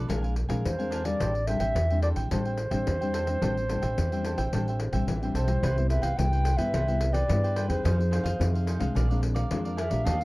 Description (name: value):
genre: samba and choro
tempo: 108 BPM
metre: 4/4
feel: straight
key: A minor, C major from 5.6 s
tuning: A4 = 442 Hz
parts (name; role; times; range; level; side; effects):
- cavaquinho; accompaniment; 0.0-10.2 s; D4 to Ab5; -37 LUFS; right 3 dB; none
- nylon-string guitar; accompaniment; 0.0-10.2 s; G2 to Ab4; -33 LUFS; left 3 dB; none
- upright bass; bass; 0.0-10.2 s; A1 to G2; -27 LUFS; equal; none
- pandeiro; percussion; 0.1-10.2 s; none; -35 LUFS; left 3 dB; none
- bright baroque flute; melody; 0.7-10.2 s; C5 to G5; -30 LUFS; equal; none
room: little or no reverb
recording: dark, warm production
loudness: -24 LUFS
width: side -20 dB against mid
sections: 0.0-5.6 A section; 5.6-10.2 B section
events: none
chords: 0.1 Bb9; 1.2 Am11; 5.6 Cmaj7; 7.8 Fm7; 9.0 Bb9